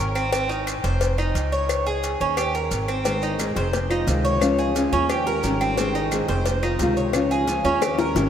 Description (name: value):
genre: latin, Cuban son and guajira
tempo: 176 BPM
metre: 4/4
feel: straight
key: Ab major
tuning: A4 = 439 Hz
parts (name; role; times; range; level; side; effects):
- Cuban tres; arpeggios; 0.0-8.3 s; C4 to Db5; -24 LUFS; right 2 dB; none
- upright bass; bass; 0.0-8.3 s; F1 to Eb2; -27 LUFS; equal; none
- claves; percussion; 0.2-8.0 s; none; -40 LUFS; left 7 dB; none
- maracas; percussion; 0.2-8.3 s; none; -37 LUFS; right 9 dB; none
- cowbell and bongos; percussion; 0.3-8.3 s; none; -29 LUFS; left 6 dB; none
- nylon-string guitar; accompaniment; 3.0-8.3 s; C3 to Ab4; -24 LUFS; left 1 dB; none
room: wet cathedral reverb, RT60 6.1 s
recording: in a vast, echoing space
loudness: -20 LUFS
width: side -9 dB against mid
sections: 0.0-8.3 A section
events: drum fill 7.8-8.3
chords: 0.3 Ab; 1.0 F5; 1.7 Db5; 2.4 Eb; 3.1 Ab; 3.7 Fm7; 4.4 Db; 5.1 Eb7; 5.8 Ab; 6.5 Fm7; 7.1 Db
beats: | 0.33 0.67 1.01 1.35 | 1.69 2.03 2.37 2.71 | 3.06 3.40 3.74 4.08 | 4.42 4.76 5.10 5.44 | 5.78 6.12 6.46 6.80 | 7.14 7.48 7.82 8.16